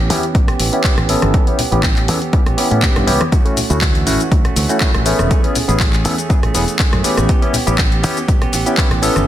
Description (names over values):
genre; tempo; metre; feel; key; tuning
filtered disco house; 121 BPM; 4/4; swing 53% on 16ths; A major; A4 = 439 Hz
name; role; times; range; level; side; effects
direct-recorded clean electric guitar; riff; 0.0-9.3 s; E3 to G#4; -23 LUFS; right 6 dB; vintage 12-bit sampler grit, sidechain pumping, low-pass filter
modern bright fingered electric bass; bass; 0.0-9.2 s; E1 to A2; -19 LUFS; equal; sidechain pumping, low-pass filter
barky tine electric piano; accompaniment; 0.1-9.3 s; A3 to A4; -19 LUFS; left 1 dB; overdrive, phaser, sidechain pumping, low-pass filter
house drum kit; drums; 0.1-9.3 s; handclaps, hi-hat, rim click, shaker; -20 LUFS; left 1 dB; sidechain pumping on hats, studio reverb, sidechain pumping on perc
congas and tambourine; percussion; 0.1-9.3 s; none; -26 LUFS; left 2 dB; sidechain pumping on perc, low-pass filter on perc
electronic kick drum; drums; 0.3-8.9 s; none; -15 LUFS; equal; overdrive, studio reverb
room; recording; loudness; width
light reverb; dense, heavily limited modern master, faint mains hum; -12 LUFS; side -12 dB against mid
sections
0.0-9.3 A section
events
filter sweep 0.0-9.3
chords
0.0 A9; 3.3 Dmaj9; 5.1 Amaj7; 7.3 A9